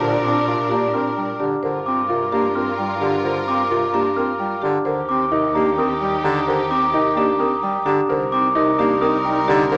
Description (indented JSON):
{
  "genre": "classical, minimalist pattern music",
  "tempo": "260 BPM (eighths)",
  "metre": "7/8",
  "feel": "straight",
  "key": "G minor",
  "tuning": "A4 = 440 Hz",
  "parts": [
    { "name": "marimba with soft mallets", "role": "melody", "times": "0.0-9.8 s", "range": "G4 to G5", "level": "-26 LUFS", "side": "equal", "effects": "none" },
    { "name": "wooden-headed alto flute", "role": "second line", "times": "0.0-9.8 s", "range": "D4 to G4", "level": "-32 LUFS", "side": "equal", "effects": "none" },
    { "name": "warm bass clarinet", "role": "accompaniment", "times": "0.0-9.8 s", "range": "C3 to C4", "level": "-29 LUFS", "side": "equal", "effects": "none" },
    { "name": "rich studio string section", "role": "sustained chords", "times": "0.0-9.8 s", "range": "D4 to Bb4", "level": "-29 LUFS", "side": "equal", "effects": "none" },
    { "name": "dark grand piano", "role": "arpeggios", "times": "0.0-9.8 s", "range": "D4 to Bb4", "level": "-27 LUFS", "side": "equal", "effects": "none" },
    { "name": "rich cello", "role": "bass", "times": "0.0-9.8 s", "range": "C2 to Bb2", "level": "-33 LUFS", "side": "equal", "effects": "none" },
    { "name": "glockenspiel with rubber mallets", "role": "arpeggios", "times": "0.2-9.8 s", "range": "Bb5 to F6", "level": "-24 LUFS", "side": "equal", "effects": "none" }
  ],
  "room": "moderate large studio reverb, RT60 0.9 s",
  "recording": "none",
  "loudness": "-20 LUFS",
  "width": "mono",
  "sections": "0.0-9.8 A section",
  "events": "none",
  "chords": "0.0 Bb6; 1.6 Gm7; 4.9 Ebmaj7; 8.1 Cm7"
}